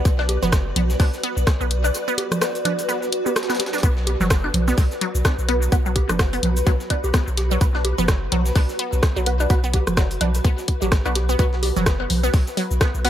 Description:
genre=minimal techno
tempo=127 BPM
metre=4/4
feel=swing 58% on 16ths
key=B minor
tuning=A4 = 440 Hz
part: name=granular cloud pad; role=texture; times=0.0-13.1 s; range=F#4 to B5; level=-28 LUFS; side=equal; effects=built-in reverb, sidechain pumping
part: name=punchy sub bass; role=bass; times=0.1-13.1 s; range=F#1 to B1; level=-22 LUFS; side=equal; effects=sidechain pumping
part: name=breakbeat sampler-style drum kit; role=drums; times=0.1-13.1 s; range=hi-hat, snare drum, tambourine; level=-35 LUFS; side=equal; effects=high-pass filter on snare, high-pass filter on perc, high-pass filter on hats, dub echo
part: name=electronic kick drum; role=drums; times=0.1-12.9 s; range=none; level=-19 LUFS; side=equal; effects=none
part: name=garage drum kit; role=drums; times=0.1-13.1 s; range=cabasa, hi-hat, rim click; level=-27 LUFS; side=left 1 dB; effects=dub echo
part: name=resonant blip pluck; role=riff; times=0.2-13.1 s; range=F#3 to D4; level=-27 LUFS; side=equal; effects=phaser, cassette tape, sidechain pumping, tape echo
part: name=woodblock, bongos and congas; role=percussion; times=0.2-12.9 s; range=none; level=-27 LUFS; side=right 2 dB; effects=overdrive, dub echo
part: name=filtered dub chord stab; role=stabs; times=3.8-13.1 s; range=B3 to B4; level=-30 LUFS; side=right 1 dB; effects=analog chorus, dub echo
room=light reverb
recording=echo-heavy mix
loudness=-18 LUFS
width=side -11 dB against mid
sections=0.0-13.1 A section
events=break 1.9-3.8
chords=0.0 B5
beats=| 0.05 0.53 1.00 1.47 | 1.94 2.42 2.89 3.36 | 3.83 4.30 4.78 5.25 | 5.72 6.19 6.67 7.14 | 7.61 8.08 8.56 9.03 | 9.50 9.97 10.45 10.92 | 11.39 11.86 12.34 12.81

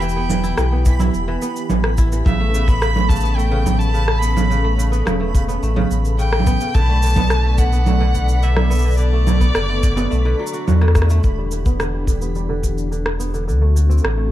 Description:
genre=folktronica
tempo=107 BPM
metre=4/4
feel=straight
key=E minor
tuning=A4 = 440 Hz
part: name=rich violin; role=melody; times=0.0-10.6 s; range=D5 to B5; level=-25 LUFS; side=left 2 dB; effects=ping-pong delay
part: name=warm analog pad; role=sustained chords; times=0.0-14.3 s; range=D3 to D5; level=-28 LUFS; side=equal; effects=chorus
part: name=kora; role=arpeggios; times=0.0-14.3 s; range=C#3 to F#4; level=-26 LUFS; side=right 1 dB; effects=low-pass filter, ping-pong delay
part: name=warm sub bass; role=bass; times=0.0-14.3 s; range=E1 to E2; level=-17 LUFS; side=equal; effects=none
part: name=electronic cabasa, congas and rim click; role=drums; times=0.0-14.2 s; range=none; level=-23 LUFS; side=right 4 dB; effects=none
part: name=backwards swelling texture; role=texture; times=0.0-11.2 s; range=B5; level=-32 LUFS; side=right 5 dB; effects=built-in reverb
part: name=kick drum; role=drums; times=0.9-12.7 s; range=none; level=-18 LUFS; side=equal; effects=none
room=small room ambience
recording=dark, warm production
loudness=-15 LUFS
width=side -13 dB against mid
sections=0.0-11.2 A section; 11.2-14.3 B section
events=none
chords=0.0 Em; 2.3 Aadd9; 6.7 Bm7; 11.2 Em7; 13.5 D7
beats=| 0.02 0.58 1.14 1.70 | 2.26 2.82 3.38 3.94 | 4.50 5.07 5.63 6.19 | 6.75 7.31 7.87 8.43 | 8.99 9.55 10.11 10.67 | 11.23 11.79 12.36 12.92 | 13.48 14.04

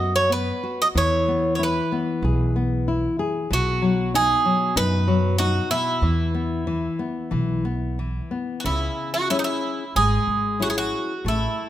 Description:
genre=fado-style ballad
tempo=93 BPM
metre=4/4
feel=rubato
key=E major, C# minor from 8.6 s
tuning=A4 = 440 Hz
part: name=Greek bouzouki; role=melody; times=0.0-11.7 s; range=D#4 to D#5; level=-23 LUFS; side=right 2 dB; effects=none
part: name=nylon-string guitar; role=accompaniment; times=0.0-11.7 s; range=B2 to G#4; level=-25 LUFS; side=left 4 dB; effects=none
part: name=upright bass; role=bass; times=0.0-11.5 s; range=G#1 to F#2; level=-24 LUFS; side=right 1 dB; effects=none
room=moderate recital hall reverb, RT60 1.8 s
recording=close, detailed microphones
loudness=-20 LUFS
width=side -12 dB against mid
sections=0.0-8.6 A section; 8.6-11.7 B section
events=none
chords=0.0 B5; 0.9 E; 3.5 B6; 6.0 E5; 8.6 C#m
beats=0.30 | 0.95 1.59 2.23 2.87 | 3.50 4.13 4.76 5.39 | 6.03 6.67 7.32 7.99 | 8.65 9.31 9.96 10.61 | 11.25

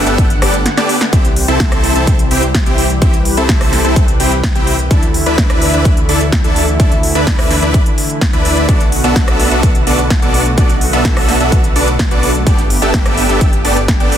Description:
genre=EDM, festival progressive house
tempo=127 BPM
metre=4/4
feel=straight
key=G major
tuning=A4 = 439 Hz
part: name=lush unison pad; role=sustained chords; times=0.0-14.2 s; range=D3 to F#5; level=-20 LUFS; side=equal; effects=chorus, sidechain pumping
part: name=big supersaw lead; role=riff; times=0.0-14.2 s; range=B3 to E5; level=-16 LUFS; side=equal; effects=sidechain pumping, digital delay
part: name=wide detuned saw bass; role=bass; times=0.0-14.2 s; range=G1 to D2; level=-18 LUFS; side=equal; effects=chorus, sidechain pumping
part: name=big-room dance drum kit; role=drums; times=0.1-14.2 s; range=hi-hat, rim click, snare drum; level=-19 LUFS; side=equal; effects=none
part: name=electronic kick drum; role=drums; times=0.2-14.0 s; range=none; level=-13 LUFS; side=equal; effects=none
room=little or no reverb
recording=dense, heavily limited modern master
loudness=-10 LUFS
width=side -10 dB against mid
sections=0.0-14.2 A section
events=drum fill 0.7-1.1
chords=0.0 Gadd9; 1.1 C; 4.9 Dsus2; 8.7 Bm7; 12.5 Gadd9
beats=0.18 0.66 | 1.13 1.60 2.07 2.54 | 3.02 3.49 3.96 4.43 | 4.91 5.38 5.85 6.33 | 6.80 7.27 7.74 8.21 | 8.69 9.16 9.63 10.10 | 10.58 11.05 11.52 11.99 | 12.47 12.94 13.41 13.88

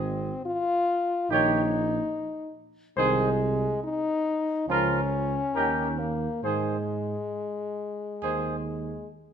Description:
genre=classical, brass quintet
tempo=67-72 BPM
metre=4/4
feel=rubato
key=Ab major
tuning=A4 = 440 Hz
part: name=warm French horn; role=accompaniment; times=0.0-9.1 s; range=Ab3 to F4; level=-28 LUFS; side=left 3 dB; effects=none
part: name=mellow tuba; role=bass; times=0.0-9.0 s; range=Ab1 to Ab2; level=-31 LUFS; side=right 5 dB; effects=none
part: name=mellow trumpet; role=melody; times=1.3-8.6 s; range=Bb4 to Db5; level=-31 LUFS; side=left 7 dB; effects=none
part: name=warm trumpet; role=second line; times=1.3-8.6 s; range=F4 to Ab4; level=-30 LUFS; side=right 9 dB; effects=none
part: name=clear trombone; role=accompaniment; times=1.3-8.6 s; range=Eb3 to F3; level=-35 LUFS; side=right 6 dB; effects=none
room=moderate recital hall reverb, RT60 1.3 s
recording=none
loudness=-25 LUFS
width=side -8 dB against mid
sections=0.0-9.3 A section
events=none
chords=0.0 Ab; 1.3 Eb5/Bb; 3.0 Ab/C; 4.7 Bbm/Db; 5.5 Eb7; 6.4 Ab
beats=0.46 1.31 2.14 | 2.97 3.84 4.69 5.55 | 6.43 7.33 8.22

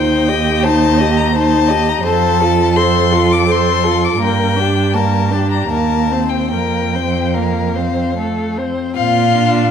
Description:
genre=classical, slow romantic movement for string quartet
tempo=70-87 BPM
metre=3/4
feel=rubato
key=unclear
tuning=A4 = 440 Hz
part: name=rich violin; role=melody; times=0.0-9.7 s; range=F5 to D6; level=-18 LUFS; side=left 10 dB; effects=none
part: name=rich violin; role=second line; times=0.0-9.7 s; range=F4 to Eb5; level=-21 LUFS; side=left 3 dB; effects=none
part: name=rich viola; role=accompaniment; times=0.0-9.7 s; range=A3 to A4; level=-18 LUFS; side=right 1 dB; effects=none
part: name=clear cello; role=bass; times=0.0-9.7 s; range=Eb2 to Bb2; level=-17 LUFS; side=right 4 dB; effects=none
room=moderate recital hall reverb, RT60 1.4 s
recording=none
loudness=-12 LUFS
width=side -8 dB against mid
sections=0.0-9.0 A section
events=none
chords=0.0 Cm/Eb; 2.1 F; 4.2 Gm; 5.7 Cm7/Eb; 6.5 Fsus4; 8.2 F; 9.0 Bb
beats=0.64 1.35 | 2.06 2.77 3.49 | 4.20 4.94 5.71 | 6.52 7.36 8.17 | 8.98

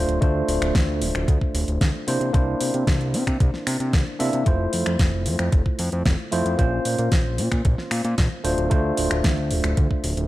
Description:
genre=nu-disco, nu disco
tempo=113 BPM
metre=4/4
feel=straight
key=unclear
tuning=A4 = 439 Hz
part: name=tine electric piano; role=accompaniment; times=0.0-10.3 s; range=A3 to E5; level=-25 LUFS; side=equal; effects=medium stereo tremolo, sidechain pumping, analog delay
part: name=fat analog bass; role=bass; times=0.0-10.3 s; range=D1 to C3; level=-24 LUFS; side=equal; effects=none
part: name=pop drum kit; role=drums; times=0.1-10.3 s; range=finger snaps, hi-hat, snare drum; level=-28 LUFS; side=equal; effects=small room reverb
part: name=electronic kick drum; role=drums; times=0.2-10.0 s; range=none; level=-20 LUFS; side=equal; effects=small room reverb
room=light reverb, digital ambience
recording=echo-heavy mix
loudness=-19 LUFS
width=side -16 dB against mid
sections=0.0-10.3 A section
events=none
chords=0.0 Dm7; 2.1 C9; 4.5 Fmaj7; 6.6 Bbmadd9; 8.4 Dm7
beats=| 0.21 0.75 1.28 1.81 | 2.34 2.87 3.40 3.93 | 4.46 4.99 5.53 6.06 | 6.59 7.12 7.65 8.18 | 8.71 9.24 9.77

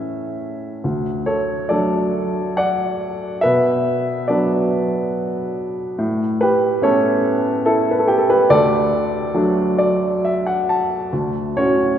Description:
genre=classical, lyrical solo piano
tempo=70 BPM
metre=3/4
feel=rubato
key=D major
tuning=A4 = 440 Hz
part: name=warm upright piano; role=solo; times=0.0-12.0 s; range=D2 to A5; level=-16 LUFS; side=equal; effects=none
room=wet church reverb, RT60 3.6 s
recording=recorded in a church or concert hall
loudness=-16 LUFS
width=side -9 dB against mid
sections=0.0-11.1 A section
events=upright piano fill 9.4-11.1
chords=0.0 A; 0.8 D; 3.4 Bm; 6.0 Aadd9; 8.5 D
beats=| 0.83 1.71 2.58 | 3.44 4.30 5.15 | 5.99 6.83 7.66 | 8.51 9.36 10.24 | 11.13

